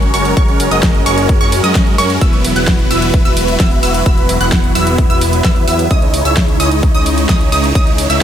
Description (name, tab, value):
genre	EDM, festival progressive house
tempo	130 BPM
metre	4/4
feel	straight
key	unclear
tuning	A4 = 444 Hz
part	lush unison pad	sustained chords	0.0-8.2 s	C#3 to B4	-22 LUFS	equal	chorus, sidechain pumping
part	wide unison pluck	arpeggios	0.0-8.2 s	C#6 to F#6	-20 LUFS	right 1 dB	sidechain pumping, digital delay
part	supersaw chords	riff	0.0-8.2 s	F#3 to F#5	-16 LUFS	right 1 dB	phaser, sidechain pumping, digital delay
part	fat analog bass	bass	0.0-8.2 s	E1 to F#2	-18 LUFS	equal	sidechain pumping
part	big-room dance drum kit	drums	0.0-8.2 s	hi-hat, snare drum	-19 LUFS	equal	overdrive
part	electronic kick drum	drums	0.4-7.8 s	none	-13 LUFS	equal	overdrive
room	light reverb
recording	none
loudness	-10 LUFS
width	side -10 dB against mid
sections	0.0-8.2 A section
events	none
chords	0.0 F#add9; 2.2 Esus2; 5.9 C#madd9